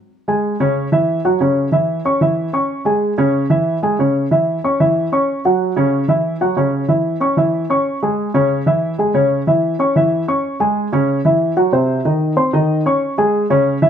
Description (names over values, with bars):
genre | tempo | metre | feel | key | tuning
jazz | 186 BPM | 4/4 | straight | C# minor | A4 = 439 Hz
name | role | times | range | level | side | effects
dark upright piano | solo | 0.3-13.9 s | C3 to C#6 | -14 LUFS | equal | none
room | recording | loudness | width
light reverb | none | -14 LUFS | side -8 dB against mid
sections
0.1-13.9 A section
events
none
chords
0.1 C#m; 5.3 F#5; 7.9 C#m; 10.4 C#madd11; 11.7 Cm; 13.0 C#m